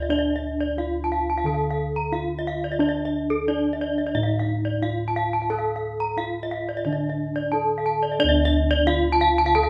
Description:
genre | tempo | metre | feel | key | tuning
Balinese gamelan | 89 BPM | 4/4 | straight | unclear | A4 = 441 Hz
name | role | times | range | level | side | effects
gamelan-type bronze metallophone | melody | 0.0-9.7 s | D4 to A4-30c | -29 LUFS | equal | none
gamelan-type bronze metallophone | arpeggios | 0.0-9.7 s | A4-30c to Bb5-20c | -27 LUFS | equal | none
gamelan-type bossed gongs | bass | 0.0-9.7 s | D2 to A4-30c | -29 LUFS | equal | none
room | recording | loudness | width
wet large studio reverb, RT60 0.9 s | band playing live in one room, nothing above 10.5 kHz | -24 LUFS | mono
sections
0.0-9.7 A section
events
none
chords
none

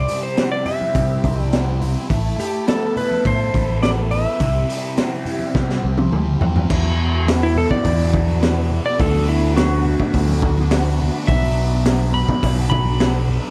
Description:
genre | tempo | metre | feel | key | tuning
psychedelic rock | 104 BPM | 4/4 | straight | unclear | A4 = 441 Hz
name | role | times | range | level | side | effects
clean lap steel guitar | melody | 0.0-13.5 s | E4 to B5 | -26 LUFS | equal | slapback echo
warm studio string section | sustained chords | 0.0-13.5 s | A3 to A4 | -32 LUFS | equal | none
fuzz guitar | riff | 0.0-13.5 s | E2 to E4 | -28 LUFS | equal | distortion, phaser
fingered electric bass | bass | 0.0-13.4 s | A1 to C3 | -22 LUFS | equal | none
crunchy breakbeat drum kit | drums | 0.1-13.1 s | crash cymbal, hi-hat, kick drum, snare drum, toms | -24 LUFS | equal | none
congas | percussion | 0.1-13.4 s | none | -34 LUFS | equal | none
room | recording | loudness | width
light reverb | none | -19 LUFS | mono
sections
0.0-6.7 A section; 6.7-13.5 B section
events
drum fill 5.5-6.7; electric slide guitar solo 6.7-13.5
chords
0.0 C; 2.1 Asus2; 4.4 C; 6.7 Esus2; 9.0 D6; 11.3 Bm

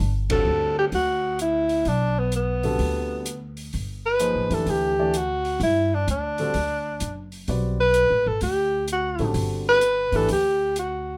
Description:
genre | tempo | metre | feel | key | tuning
modal jazz | 128 BPM | 4/4 | swing 66% on 8ths | G major | A4 = 440 Hz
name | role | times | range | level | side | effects
warm grand piano | accompaniment | 0.0-10.3 s | C3 to D5 | -30 LUFS | equal | none
upright bass | bass | 0.0-11.2 s | F#1 to G2 | -30 LUFS | equal | none
breathy tenor saxophone | melody | 0.3-11.2 s | B3 to B4 | -24 LUFS | equal | none
open jazz drum kit | drums | 0.3-10.9 s | hi-hat, kick drum, ride cymbal | -39 LUFS | equal | none
room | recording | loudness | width
moderate club reverb, RT60 0.7 s | none | -23 LUFS | mono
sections
0.0-11.2 A section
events
band accent 0.2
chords
0.0 Gmaj9

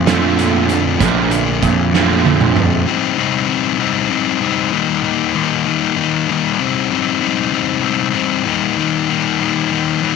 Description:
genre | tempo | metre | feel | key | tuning
indie rock | 64 BPM (dotted quarters) | 6/8 | straight | C dorian | A4 = 442 Hz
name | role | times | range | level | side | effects
raw garage guitar | riff | 0.0-2.8 s | Bb2 to Bb3 | -18 LUFS | right 14 dB | overdrive, analog chorus, tape echo
sludgy distorted guitar | riff | 0.0-10.2 s | Bb2 to Eb4 | -15 LUFS | left 10 dB | overdrive
fuzz fingered electric bass | bass | 0.0-2.8 s | Bb1 to F2 | -18 LUFS | right 2 dB | overdrive
loose indie drum kit | drums | 0.1-2.7 s | hi-hat, kick drum, snare drum, toms | -18 LUFS | right 7 dB | none
room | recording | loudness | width
light reverb, studio reverb | 1960s-style stereo with parts hard left and right | -14 LUFS | side -5 dB against mid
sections
0.0-2.9 A section; 2.9-10.2 B section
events
drum fill 1.9-2.9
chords
0.0 Bbmaj7; 2.9 Cm; 4.7 Eb; 6.6 Cm; 8.5 Eb

